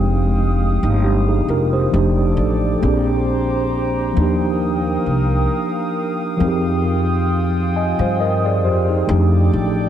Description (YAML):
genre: lo-fi hip hop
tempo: 67 BPM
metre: 4/4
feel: swing 55% on 16ths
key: F dorian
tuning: A4 = 441 Hz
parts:
  - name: mellow tine electric piano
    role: accompaniment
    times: 0.0-9.9 s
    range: F3 to Ab5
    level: -19 LUFS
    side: right 1 dB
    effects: medium stereo tremolo, low-pass filter
  - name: warbly tape-like pad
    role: sustained chords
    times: 0.0-9.9 s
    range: Ab3 to Eb6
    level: -24 LUFS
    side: equal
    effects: chorus, built-in reverb, low-pass filter
  - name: upright bass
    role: bass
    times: 0.0-9.9 s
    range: F1 to G2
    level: -19 LUFS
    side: equal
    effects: none
room: light reverb, small room ambience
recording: dark, warm production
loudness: -15 LUFS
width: side -10 dB against mid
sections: 0.0-9.9 A section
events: none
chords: 0.0 Fm9; 1.9 F13; 2.8 Bb13; 4.2 Ebmaj9; 6.4 Fm9; 9.1 F13